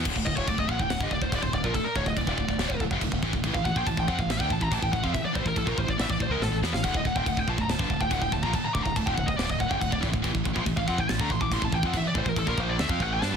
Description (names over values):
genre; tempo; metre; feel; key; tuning
heavy metal; 141 BPM; 4/4; straight; unclear; A4 = 438 Hz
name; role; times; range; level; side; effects
high-gain distorted guitar; riff; 0.0-13.4 s; D2 to D4; -29 LUFS; equal; distortion
growling fingered electric bass; bass; 0.0-13.4 s; D1 to G2; -31 LUFS; equal; overdrive
tight metal drum kit; drums; 0.1-13.3 s; crash cymbal, kick drum, snare drum; -30 LUFS; equal; none
high-gain lead guitar; melody; 0.3-13.3 s; A4 to D6; -30 LUFS; left 1 dB; distortion, digital delay
room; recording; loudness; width
little or no reverb; dense, heavily limited modern master; -24 LUFS; side -7 dB against mid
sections
0.1-13.4 A section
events
lead electric guitar solo 0.1-13.4; drum fill 6.4-6.8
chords
0.1 D5; 3.4 A5; 6.8 D; 10.2 A5